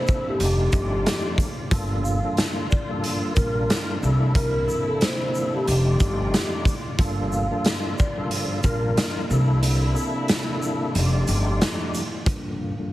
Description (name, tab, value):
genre	hip hop, boom-bap hip-hop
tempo	91 BPM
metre	4/4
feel	swing 59% on 16ths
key	G minor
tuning	A4 = 437 Hz
part	vibraphone with soft mallets	melody	0.0-12.9 s	G4 to F5	-29 LUFS	equal	high-pass filter, low-pass filter, digital delay
part	tonewheel organ	accompaniment	0.0-12.9 s	F2 to Bb4	-28 LUFS	left 1 dB	overdrive, chorus vibrato, slow rotary speaker, high-pass filter, low-pass filter
part	muted studio string section	sustained chords	0.0-12.2 s	D3 to D5	-35 LUFS	equal	high-pass filter, low-pass filter
part	raw garage drum kit	drums	0.1-12.4 s	hi-hat, kick drum, shaker, snare drum	-24 LUFS	equal	none
part	upright bass	bass	0.4-11.6 s	F1 to C2	-23 LUFS	equal	none
room	light reverb, studio reverb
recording	heavily compressed radio sound, multiband compression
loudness	-20 LUFS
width	side -16 dB against mid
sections	0.0-12.3 A section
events	kick muted 9.6-12.3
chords	0.4 F13; 1.7 Gm9; 4.0 C13; 5.7 F13; 7.0 Gm9; 9.3 C13; 10.9 F13; 12.3 Gm9